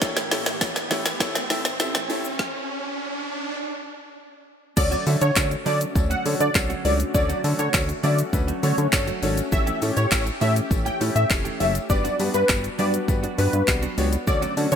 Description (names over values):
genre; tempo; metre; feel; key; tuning
dance-pop; 101 BPM; 4/4; straight; D major; A4 = 440 Hz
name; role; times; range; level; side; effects
clear concert grand piano; accompaniment; 0.0-14.7 s; B3 to E5; -29 LUFS; left 2 dB; sidechain pumping
warm analog pad; sustained chords; 0.0-14.8 s; A2 to C#5; -33 LUFS; left 3 dB; chorus, sidechain pumping
semi-hollow electric guitar; riff; 0.0-14.8 s; E3 to G4; -33 LUFS; right 8 dB; analog chorus
deep house drum kit; drums; 0.0-14.8 s; crash cymbal, handclaps, hi-hat, kick drum, shaker, snare drum; -24 LUFS; equal; none
tambourine; percussion; 0.0-14.8 s; none; -40 LUFS; left 13 dB; none
riser; sound effects; 0.0-3.6 s; none; -31 LUFS; right 1 dB; none
plucky unison lead; melody; 4.8-14.8 s; B4 to G5; -26 LUFS; equal; ensemble chorus, sidechain pumping, ping-pong delay
chorused synth bass; bass; 4.8-14.8 s; F1 to D3; -24 LUFS; equal; sidechain pumping
room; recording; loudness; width
light reverb; bright 1980s-style digital production, high-pass filter; -20 LUFS; side -8 dB against mid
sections
0.0-4.8 A section; 4.8-14.8 B section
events
build-up 0.0-4.8; drum fill 0.0-2.4; riser 0.0-4.8; filter sweep 0.0-4.8; stop 2.4-4.8; drop 4.8-14.8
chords
0.0 A7; 2.4 N.C.; 4.8 Dmaj7; 9.5 A7; 11.9 Gmaj7